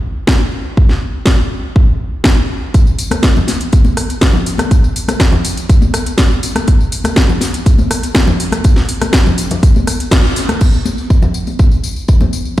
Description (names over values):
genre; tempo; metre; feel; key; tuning
nu-disco; 122 BPM; 4/4; straight; none; none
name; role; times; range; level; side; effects
electronic kick drum; drums; 0.3-12.6 s; none; -10 LUFS; equal; none
house drum kit; drums; 0.3-12.6 s; crash cymbal, hi-hat, rim click, snare drum, tambourine; -17 LUFS; equal; none
congas; percussion; 3.1-12.3 s; none; -18 LUFS; left 2 dB; none
room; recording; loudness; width
light reverb, digital ambience; played on a big sound system in a bare room, large studio reverb; -10 LUFS; side -15 dB against mid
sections
0.0-10.6 A section; 10.6-12.6 B section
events
band accent 10.1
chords
none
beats
0.28 | 0.78 1.27 1.76 2.25 | 2.74 3.24 3.73 4.22 | 4.71 5.20 5.70 6.19 | 6.68 7.17 7.66 8.15 | 8.65 9.14 9.63 10.12 | 10.61 11.11 11.60 12.09 | 12.58